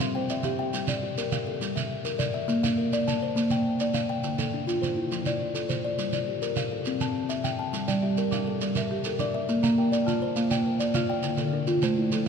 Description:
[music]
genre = southern african traditional, mbira-style interlocking cycle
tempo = 137 BPM (dotted quarters)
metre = 12/8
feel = straight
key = G dorian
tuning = A4 = 440 Hz
[part]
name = buzzing marimba with medium mallets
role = arpeggios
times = 0.0-1.0, 7.9-12.3 s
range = D3 to G5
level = -29 LUFS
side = right 2 dB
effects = none
[part]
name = kalimba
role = arpeggios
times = 0.0-12.3 s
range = D3 to A5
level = -27 LUFS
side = left 2 dB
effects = none
[part]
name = shekere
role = percussion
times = 0.0-12.3 s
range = none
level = -31 LUFS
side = right 4 dB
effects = none
[sound]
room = wet cathedral reverb, RT60 5.0 s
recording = recorded in a church or concert hall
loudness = -24 LUFS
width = side -6 dB against mid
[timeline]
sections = 0.7-12.3 A section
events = none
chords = 0.0 C; 0.7 Gm; 2.5 Bb; 4.2 Dm; 5.1 F; 6.0 Gm; 6.9 C; 7.7 Gm; 9.5 Bb; 11.2 Dm

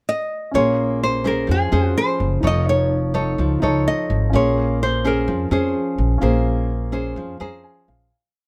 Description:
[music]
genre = bossa nova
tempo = 127 BPM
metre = 4/4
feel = straight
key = Bb minor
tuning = A4 = 440 Hz
[part]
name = nylon-string guitar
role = melody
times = 0.1-7.6 s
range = Ab4 to Eb5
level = -24 LUFS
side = equal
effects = none
[part]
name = nylon-string guitar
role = accompaniment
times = 0.5-8.1 s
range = F3 to C#5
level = -24 LUFS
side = equal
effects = none
[part]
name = warm baby grand piano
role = accompaniment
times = 0.5-8.1 s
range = Db4 to C6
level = -31 LUFS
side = equal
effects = none
[part]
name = upright bass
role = bass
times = 0.5-8.1 s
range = F1 to F2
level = -24 LUFS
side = equal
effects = none
[sound]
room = little or no reverb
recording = close, detailed microphones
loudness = -20 LUFS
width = mono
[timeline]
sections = 0.0-0.5 pickup bar; 0.5-8.1 A section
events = fade-out 6.2-8.1; grand piano fill 7.2-8.1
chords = 0.0 N.C.; 0.5 Bbm9; 2.4 F7b13; 4.3 Bbm9

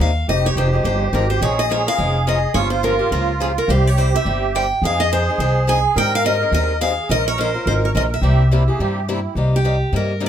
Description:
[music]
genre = acoustic string swing (jazz manouche)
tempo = 212 BPM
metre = 4/4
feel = swing 59% on 8ths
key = F minor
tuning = A4 = 437 Hz
[part]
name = picked steel-string acoustic guitar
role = melody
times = 0.0-10.3 s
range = G4 to Ab5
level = -21 LUFS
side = equal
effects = none
[part]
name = picked swing-style acoustic guitar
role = accompaniment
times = 0.0-10.3 s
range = C3 to Bb4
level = -25 LUFS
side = left 4 dB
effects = none
[part]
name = upright bass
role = bass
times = 0.0-10.3 s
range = F1 to Ab2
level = -19 LUFS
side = equal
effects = none
[part]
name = musette accordion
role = second line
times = 0.3-9.3 s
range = E4 to Bb4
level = -23 LUFS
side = right 7 dB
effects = none
[sound]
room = light reverb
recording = close, detailed microphones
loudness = -15 LUFS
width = side -9 dB against mid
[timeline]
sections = 0.3-9.4 A section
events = none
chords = 0.3 Fm7; 1.4 Bbm7; 2.6 Gm7b5; 3.7 C; 4.8 Fm7; 6.0 Abmaj7; 7.1 Bbm7; 8.2 C7; 9.4 Cm7

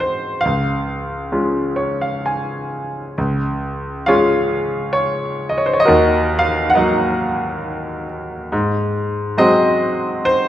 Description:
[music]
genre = classical, lyrical solo piano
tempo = 68 BPM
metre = 3/4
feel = rubato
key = Db major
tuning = A4 = 440 Hz
[part]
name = bright grand piano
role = solo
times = 0.0-10.5 s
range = Db2 to Ab5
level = -16 LUFS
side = equal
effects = none
[sound]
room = wet recital hall reverb, RT60 1.6 s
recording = recorded in a church or concert hall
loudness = -16 LUFS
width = side -12 dB against mid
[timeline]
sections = 0.0-3.2 A section; 3.2-10.5 A section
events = grand piano fill 1.3-3.2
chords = 0.4 Db; 5.9 Ebm; 8.5 Ab7

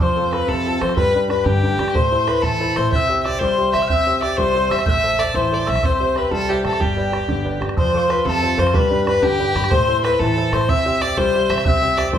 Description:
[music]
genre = celtic folk, Celtic jig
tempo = 124 BPM (dotted quarters)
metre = 6/8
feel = straight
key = unclear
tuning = A4 = 440 Hz
[part]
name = rich fiddle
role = melody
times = 0.0-12.2 s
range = G4 to E5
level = -20 LUFS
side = left 1 dB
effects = none
[part]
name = mellow tin whistle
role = second line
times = 0.0-12.2 s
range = G5 to G6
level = -24 LUFS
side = left 3 dB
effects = none
[part]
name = clear upright piano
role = accompaniment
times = 0.0-12.2 s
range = C3 to E5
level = -23 LUFS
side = right 1 dB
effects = none
[part]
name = upright bass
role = bass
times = 0.0-12.2 s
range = G1 to G3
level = -25 LUFS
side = equal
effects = none
[part]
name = bodhran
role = percussion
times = 0.0-12.2 s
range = none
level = -24 LUFS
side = right 2 dB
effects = none
[sound]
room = wet large studio reverb, RT60 1.2 s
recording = band playing live in one room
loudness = -16 LUFS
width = side -9 dB against mid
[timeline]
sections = 0.0-7.8 A section; 7.8-12.2 A section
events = none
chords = 0.0 F; 1.0 G; 1.9 Am; 2.9 C; 4.9 Am; 5.8 C; 6.8 G; 7.8 F; 8.7 G; 9.7 Am; 10.7 C

